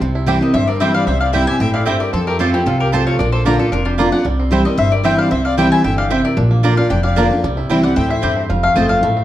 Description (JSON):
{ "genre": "bluegrass", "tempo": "226 BPM", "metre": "4/4", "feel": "straight", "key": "C mixolydian", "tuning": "A4 = 440 Hz", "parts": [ { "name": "bluegrass banjo", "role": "melody", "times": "0.0-9.2 s", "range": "G3 to G4", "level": "-25 LUFS", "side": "right 2 dB", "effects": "none" }, { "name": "picked steel-string acoustic guitar", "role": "accompaniment", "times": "0.0-9.2 s", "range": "F2 to F4", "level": "-17 LUFS", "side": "equal", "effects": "none" }, { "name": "upright bass", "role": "bass", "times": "0.0-9.2 s", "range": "F1 to F2", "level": "-20 LUFS", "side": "equal", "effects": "none" }, { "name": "mandolin", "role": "stabs", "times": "0.3-8.9 s", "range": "Bb3 to Bb5", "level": "-21 LUFS", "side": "right 4 dB", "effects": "none" }, { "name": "mandolin", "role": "melody", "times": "0.4-9.2 s", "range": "F4 to Ab5", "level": "-20 LUFS", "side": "left 4 dB", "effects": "none" }, { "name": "rich fiddle", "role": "second line", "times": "0.4-8.4 s", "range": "D4 to E5", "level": "-27 LUFS", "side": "left 3 dB", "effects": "none" } ], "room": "wet large studio reverb, RT60 0.8 s", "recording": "dark, warm production", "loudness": "-13 LUFS", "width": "side -13 dB against mid", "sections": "0.0-8.5 A section", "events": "none", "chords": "0.0 C; 2.1 F; 3.2 Bb; 4.3 C; 6.4 Bb; 7.4 C; 8.5 F", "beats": "| 0.01 0.28 0.55 0.81 | 1.07 1.34 1.60 1.87 | 2.13 2.40 2.67 2.93 | 3.19 3.46 3.73 3.99 | 4.25 4.52 4.79 5.05 | 5.32 5.58 5.84 6.11 | 6.38 6.64 6.91 7.17 | 7.44 7.70 7.97 8.23 | 8.50 8.76 9.03" }